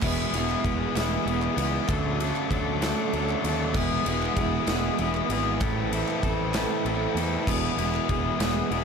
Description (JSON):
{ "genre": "indie rock", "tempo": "64 BPM (dotted quarters)", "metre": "6/8", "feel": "straight", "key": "E mixolydian", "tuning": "A4 = 436 Hz", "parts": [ { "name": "string machine, violas", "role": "sustained chords", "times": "0.0-8.8 s", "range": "G#4 to E6", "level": "-36 LUFS", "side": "right 1 dB", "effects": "ensemble chorus" }, { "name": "electric guitar through a small old amp", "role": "riff", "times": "0.0-8.8 s", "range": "A2 to B4", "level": "-30 LUFS", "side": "right 7 dB", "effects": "wide subtle chorus" }, { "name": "overdriven electric guitar", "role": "riff", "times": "0.0-8.8 s", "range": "E3 to A4", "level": "-29 LUFS", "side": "left 9 dB", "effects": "none" }, { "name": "fuzz fingered electric bass", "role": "bass", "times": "0.0-8.8 s", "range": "E1 to E2", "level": "-30 LUFS", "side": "equal", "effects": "overdrive" }, { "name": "big rock drum kit", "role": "drums", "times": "0.0-8.8 s", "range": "crash cymbal, kick drum, ride cymbal, snare drum", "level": "-30 LUFS", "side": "equal", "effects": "none" }, { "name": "group handclap", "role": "percussion", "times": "0.0-8.6 s", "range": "none", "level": "-43 LUFS", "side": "right 12 dB", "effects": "none" } ], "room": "light reverb", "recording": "none", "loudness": "-23 LUFS", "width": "side -6 dB against mid", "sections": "0.0-8.8 A section", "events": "none", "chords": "0.0 Eadd9; 1.9 Dmaj7; 3.8 Eadd9; 5.6 Amadd9; 7.5 Eadd9" }